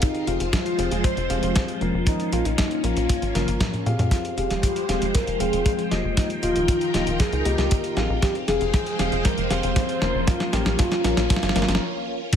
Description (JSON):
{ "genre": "italo disco", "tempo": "117 BPM", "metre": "4/4", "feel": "straight", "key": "F minor", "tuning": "A4 = 441 Hz", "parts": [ { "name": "soft octave-layered synth lead", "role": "melody", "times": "0.0-12.4 s", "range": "Eb4 to C5", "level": "-27 LUFS", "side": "left 1 dB", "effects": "chorus, phaser, ping-pong delay" }, { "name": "phased string machine", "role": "sustained chords", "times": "0.0-12.4 s", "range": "Eb3 to G5", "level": "-28 LUFS", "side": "equal", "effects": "ensemble chorus, phaser" }, { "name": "mellow tine electric piano", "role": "stabs", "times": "0.0-11.8 s", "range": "F3 to G5", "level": "-30 LUFS", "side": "left 4 dB", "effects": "fast stereo tremolo" }, { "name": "dusty soul sampler-style drum kit", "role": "drums", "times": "0.0-12.4 s", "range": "crash cymbal, hi-hat, snare drum, toms", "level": "-27 LUFS", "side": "equal", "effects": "small room reverb" }, { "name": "kick drum", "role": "drums", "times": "0.0-12.4 s", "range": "none", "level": "-22 LUFS", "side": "equal", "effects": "small room reverb" }, { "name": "tight sequencer bass", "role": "bass", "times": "0.3-11.8 s", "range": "Eb1 to Bb2", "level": "-26 LUFS", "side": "equal", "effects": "tube saturation" }, { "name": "sub drop", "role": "sound effects", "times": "12.3-12.4 s", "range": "none", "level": "-17 LUFS", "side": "equal", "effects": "none" } ], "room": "moderate plate reverb, RT60 1.1 s, digital ambience", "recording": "none", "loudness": "-20 LUFS", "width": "side -8 dB against mid", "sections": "0.0-4.1 A section; 4.1-12.3 B section", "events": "drum fill 3.4-4.1, 4.1-11.8; break 11.8-12.3", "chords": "0.0 Fmadd9; 2.1 Bbm; 4.1 Fmadd9; 6.2 Ebadd9; 8.2 Fmadd9; 10.3 Bbm" }